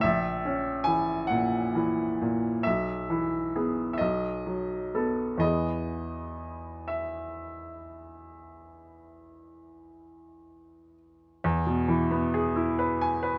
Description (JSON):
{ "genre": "classical, romantic nocturne for solo piano", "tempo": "38-48 BPM (dotted quarters)", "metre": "12/8", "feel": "rubato", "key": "E major", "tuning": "A4 = 440 Hz", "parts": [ { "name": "bright baby grand piano", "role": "solo", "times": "0.0-13.4 s", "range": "A#1 to G#5", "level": "-29 LUFS", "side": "equal", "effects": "none" } ], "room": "light reverb", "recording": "close, detailed microphones", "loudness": "-28 LUFS", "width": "mono", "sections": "0.0-11.4 A section; 11.4-13.4 B section", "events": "none", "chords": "0.0 F#7/A#; 2.7 E/B; 4.0 B7; 5.4 E" }